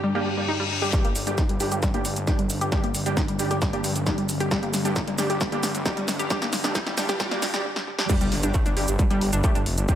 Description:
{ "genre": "driving peak-time techno", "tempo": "134 BPM", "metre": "4/4", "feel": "straight", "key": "unclear", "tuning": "A4 = 440 Hz", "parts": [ { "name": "analog pluck", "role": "riff", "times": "0.0-9.9 s", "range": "G3 to G4", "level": "-29 LUFS", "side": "equal", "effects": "chorus, sidechain pumping, tape echo" }, { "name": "metallic inharmonic drone", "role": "drone", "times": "0.0-10.0 s", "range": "G2 to D3", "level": "-32 LUFS", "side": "left 1 dB", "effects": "chorus, built-in reverb, phaser, sidechain pumping" }, { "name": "reverse cymbal, riser and impact", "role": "sound effects", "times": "0.2-9.9 s", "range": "none", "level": "-34 LUFS", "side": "left 1 dB", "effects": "none" }, { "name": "rave stab", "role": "stabs", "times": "0.1-10.0 s", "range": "G3 to G4", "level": "-30 LUFS", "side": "right 2 dB", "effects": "chorus, built-in reverb, sidechain pumping, analog delay" }, { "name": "electronic kick drum", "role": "drums", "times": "0.9-10.0 s", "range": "none", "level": "-25 LUFS", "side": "equal", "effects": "distortion, overdrive" }, { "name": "punchy analog drum machine", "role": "drums", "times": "0.9-10.0 s", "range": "crash cymbal, hi-hat, shaker, snare drum", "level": "-29 LUFS", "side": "equal", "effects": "analog delay" }, { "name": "detuned saw bass", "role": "bass", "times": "1.0-9.9 s", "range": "D1 to G2", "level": "-31 LUFS", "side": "equal", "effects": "sidechain pumping, high-pass filter" } ], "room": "moderate echo chamber reverb, RT60 2.2 s", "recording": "echo-heavy mix, high-pass filter", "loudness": "-22 LUFS", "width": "side -10 dB against mid", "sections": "0.9-8.1 A section; 8.1-10.0 B section", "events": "reverse cymbal 0.2-0.9; build-up 0.9-8.1; drum fill 0.9-7.6, 7.8-8.1; filter sweep on synth arpeggio sound 0.9-8.1; filter sweep 0.9-8.1; drop 8.1-10.0; impact 8.1-9.9", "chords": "0.0 G5", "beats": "0.04 0.48 | 0.93 1.38 1.83 2.27 | 2.72 3.17 3.62 4.07 | 4.51 4.96 5.41 5.86 | 6.30 6.75 7.20 7.65 | 8.10 8.54 8.99 9.44 | 9.89" }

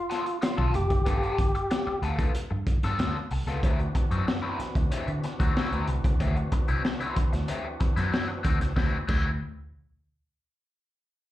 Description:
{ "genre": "funk", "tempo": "94 BPM", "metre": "4/4", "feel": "straight", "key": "D mixolydian", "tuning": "A4 = 440 Hz", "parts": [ { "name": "percussive tonewheel organ", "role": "melody", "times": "0.0-2.0 s", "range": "F4 to G4", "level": "-29 LUFS", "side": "equal", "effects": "chorus vibrato, slapback echo" }, { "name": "crunchy overdriven guitar", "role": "accompaniment", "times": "0.1-9.3 s", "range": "F#3 to A4", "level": "-33 LUFS", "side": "left 4 dB", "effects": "wah, slapback echo" }, { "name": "crunchy breakbeat drum kit", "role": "drums", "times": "0.1-9.2 s", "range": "crash cymbal, hi-hat, kick drum, snare drum", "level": "-28 LUFS", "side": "equal", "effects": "none" }, { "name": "vintage muted fingered electric bass", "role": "bass", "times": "0.6-9.4 s", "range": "F1 to D3", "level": "-28 LUFS", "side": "equal", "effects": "none" }, { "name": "tonewheel organ", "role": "sustained chords", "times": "3.6-9.1 s", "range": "E3 to F#4", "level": "-38 LUFS", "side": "right 1 dB", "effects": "slow rotary speaker, overdrive" } ], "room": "light reverb", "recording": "live gig heard through the venue's PA, club reverb", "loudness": "-24 LUFS", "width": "side -14 dB against mid", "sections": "0.0-3.6 A section; 3.6-8.8 B section; 8.8-11.3 C section", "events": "none", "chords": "0.0 G9; 3.6 D9", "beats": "0.42 | 1.06 1.71 2.35 2.99 | 3.63 4.27 4.91 5.55 | 6.20 6.84 7.48 8.12 | 8.77" }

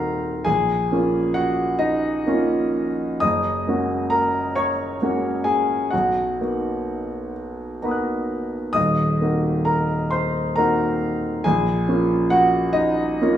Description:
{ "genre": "classical, impressionist solo piano", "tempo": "44 BPM (dotted quarters)", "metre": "6/8", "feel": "uneven beats, rubato", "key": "unclear", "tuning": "A4 = 438 Hz", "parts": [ { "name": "warm grand piano", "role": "solo", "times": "0.0-13.4 s", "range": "Eb1 to F#6", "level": "-19 LUFS", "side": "equal", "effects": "none" } ], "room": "wet recital hall reverb, RT60 1.6 s", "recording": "small room ambience", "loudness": "-19 LUFS", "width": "side -11 dB against mid", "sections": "0.0-13.4 A section", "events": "none", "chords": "0.5 Bbm7; 3.2 Gb69; 5.9 Bmaj7; 8.8 Ebm6; 11.4 Bbm7", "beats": "| 0.47 1.80 | 3.22 4.56 | 5.92 7.33 | 8.76 10.12 | 11.43 12.75" }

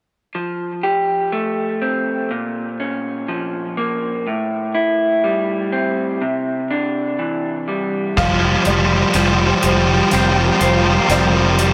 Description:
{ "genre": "post-rock", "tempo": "61 BPM", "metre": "4/4", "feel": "straight", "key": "F major", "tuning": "A4 = 440 Hz", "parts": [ { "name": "electric guitar through a small old amp", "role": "arpeggios", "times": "0.3-11.7 s", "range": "A2 to G4", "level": "-22 LUFS", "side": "equal", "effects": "spring reverb, tape echo" }, { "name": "warm studio string section", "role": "sustained chords", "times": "8.2-11.7 s", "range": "F4 to G5", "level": "-26 LUFS", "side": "equal", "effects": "none" }, { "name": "felt-muted upright piano", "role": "arpeggios", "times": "8.2-11.7 s", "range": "C5 to F5", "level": "-27 LUFS", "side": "equal", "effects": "tape echo" }, { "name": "sludgy distorted guitar", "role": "riff", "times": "8.2-11.7 s", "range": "F3 to G3", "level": "-18 LUFS", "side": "equal", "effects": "overdrive" }, { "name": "growling fingered electric bass", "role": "bass", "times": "8.2-11.7 s", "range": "F1", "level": "-22 LUFS", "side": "equal", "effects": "overdrive" }, { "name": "soft-mallet drum kit", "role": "drums", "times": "8.2-11.7 s", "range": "crash cymbal, hi-hat, kick drum, snare drum", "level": "-27 LUFS", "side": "equal", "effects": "none" } ], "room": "light reverb, small room ambience", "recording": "none", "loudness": "-18 LUFS", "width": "mono", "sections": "0.3-8.2 A section; 8.2-11.7 B section", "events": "build-up 8.2-11.7; drum fill 8.2-11.7", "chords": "0.3 Fadd9; 2.3 Bbm; 4.3 Am7; 6.2 Cadd9; 8.2 Fsus2", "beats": "| 0.35 1.33 2.31 3.29 | 4.26 5.25 6.22 7.20 | 8.18 9.16 10.13 11.11" }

